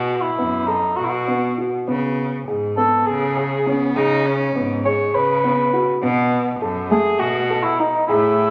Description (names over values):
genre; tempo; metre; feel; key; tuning
contemporary instrumental, chamber music in an uneven meter; 202 BPM (eighths); 7/8; straight; unclear; A4 = 440 Hz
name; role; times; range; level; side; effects
dark cor anglais; melody; 0.0-8.5 s; D#4 to C#5; -22 LUFS; equal; none
dark grand piano; arpeggios; 0.0-8.5 s; A3 to A4; -24 LUFS; equal; none
clear cello; bass; 0.0-8.5 s; F#2 to C#3; -26 LUFS; equal; none
rich viola; second line; 3.7-4.7 s; B3 to D#4; -26 LUFS; equal; none
room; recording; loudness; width
wet recital hall reverb, RT60 1.5 s; none; -19 LUFS; mono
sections
0.0-8.5 A section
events
none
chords
0.0 B5; 1.9 C#5; 6.0 B7(no3)